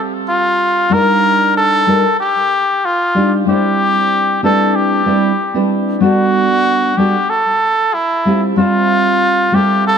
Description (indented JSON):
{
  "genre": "chillout",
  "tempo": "94 BPM",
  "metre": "4/4",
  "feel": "swing 53% on 16ths",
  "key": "unclear",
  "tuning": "A4 = 443 Hz",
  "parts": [
    { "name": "trumpet with cup mute", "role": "melody", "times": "0.0-10.0 s", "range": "E4 to Bb4", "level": "-13 LUFS", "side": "left 1 dB", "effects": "tape echo" },
    { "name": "nylon-string guitar", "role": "accompaniment", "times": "0.0-10.0 s", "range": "G3 to E5", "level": "-15 LUFS", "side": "moving between left 2 dB and right 6 dB", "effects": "auto-pan" }
  ],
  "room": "moderate plate reverb, RT60 2.9 s",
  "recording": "dark, warm production",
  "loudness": "-11 LUFS",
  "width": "side -7 dB against mid",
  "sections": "0.0-10.0 A section",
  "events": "none",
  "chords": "0.0 Fmaj9; 0.9 Ebmaj9; 3.5 Cmaj9; 6.0 Gmaj9; 8.3 Fmaj9"
}